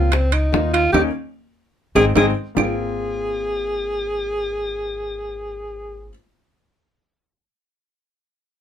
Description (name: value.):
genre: Afro-Cuban jazz.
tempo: 147 BPM.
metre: 4/4.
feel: straight.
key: Ab major.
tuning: A4 = 437 Hz.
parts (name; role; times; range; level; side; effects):
warm alto saxophone; melody; 0.0-6.1 s; C4 to Ab4; -22 LUFS; equal; none.
warm grand piano; accompaniment; 0.0-6.1 s; Ab3 to F4; -25 LUFS; left 6 dB; none.
upright bass; bass; 0.0-6.1 s; Ab1 to Eb2; -24 LUFS; equal; none.
bongos; percussion; 0.1-2.7 s; none; -22 LUFS; left 4 dB; none.
timbales; percussion; 0.1-2.7 s; none; -25 LUFS; right 9 dB; none.
claves; percussion; 0.3-2.7 s; none; -27 LUFS; right 7 dB; none.
room: light reverb.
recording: minimal, uncompressed stereo recording.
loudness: -18 LUFS.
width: side -9 dB against mid.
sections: 0.0-2.6 A section; 2.6-5.8 B section.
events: band accent 0.9-2.6; drum fill 1.8-2.6.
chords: 0.1 Db69; 0.9 Eb7(no3); 1.8 Ab; 2.6 Ab6.